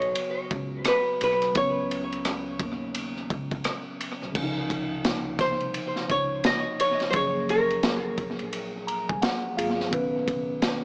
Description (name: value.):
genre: hip hop, jazz-hop.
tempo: 86 BPM.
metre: 4/4.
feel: swing 62% on 16ths.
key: Db major from 4.3 s.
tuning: A4 = 440 Hz.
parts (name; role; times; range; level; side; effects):
archtop guitar, miked and amplified; melody; 0.0-9.5 s; Bb4 to Eb5; -28 LUFS; equal; tape echo.
mellow tine electric piano; accompaniment; 0.0-10.8 s; C3 to Bb5; -34 LUFS; equal; none.
upright bass; bass; 0.0-10.8 s; Gb1 to Eb2; -40 LUFS; equal; none.
crunchy breakbeat drum kit; drums; 0.0-10.8 s; crash cymbal, hi-hat, kick drum, ride cymbal, rim click, snare drum; -32 LUFS; equal; tape echo.
room: light reverb, small room ambience.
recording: echo-heavy mix, small speaker sound.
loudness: -27 LUFS.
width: mono.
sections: 0.0-4.3 A section; 4.3-10.8 B section.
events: tine electric piano fill 8.5-9.9.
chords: 0.0 Db9sus4; 4.3 Dbmaj9; 7.1 Gbmaj9; 9.9 Cbadd9.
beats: 0.16 0.86 | 1.55 2.25 2.95 3.65 | 4.34 5.04 5.74 6.44 | 7.13 7.83 8.53 9.23 | 9.93 10.62.